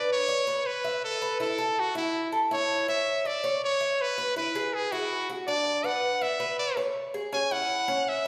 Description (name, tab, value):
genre	latin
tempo	162 BPM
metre	4/4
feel	straight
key	unclear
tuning	A4 = 441 Hz
part	brilliant trumpet	melody	0.0-8.3 s	E4 to G#5	-30 LUFS	equal	none
part	Cuban tres	arpeggios	0.0-8.2 s	C#4 to E5	-32 LUFS	equal	none
room	wet recital hall reverb, RT60 1.6 s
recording	recorded in a church or concert hall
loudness	-28 LUFS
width	mono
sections	0.0-8.3 A section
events	none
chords	0.0 Bm; 1.0 Esus4; 2.5 C#m/E; 4.0 E; 5.5 Bmadd9; 7.0 C#m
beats	0.28 0.66 | 1.03 1.40 1.77 2.14 | 2.51 2.88 3.25 3.62 | 3.99 4.36 4.74 5.11 | 5.48 5.85 6.22 6.59 | 6.96 7.33 7.70 8.07